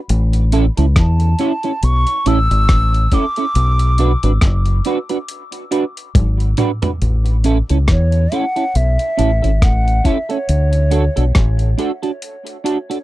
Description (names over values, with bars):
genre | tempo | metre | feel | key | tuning
roots reggae | 69 BPM | 4/4 | swing 57% on 16ths | A major | A4 = 440 Hz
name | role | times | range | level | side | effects
deep dub fingered electric bass | bass | 0.1-11.7 s | F#1 to E2 | -14 LUFS | equal | none
dusty soul sampler-style drum kit | drums | 0.1-13.0 s | hi-hat, kick drum, rim click, toms | -17 LUFS | equal | none
semi-hollow electric guitar | accompaniment | 0.5-13.0 s | C#4 to B4 | -20 LUFS | right 4 dB | analog chorus, dub echo
mellow hollow jazz flute | melody | 1.0-11.6 s | C#5 to E6 | -22 LUFS | equal | dub echo
room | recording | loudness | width
little or no reverb | dry, close 1970s-style studio recording | -13 LUFS | side -16 dB against mid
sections
0.0-7.0 A section; 7.0-13.0 B section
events
drum fill 6.2-7.0; flute solo 7.0-13.0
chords
0.1 A; 3.6 Bm; 7.0 A; 10.5 D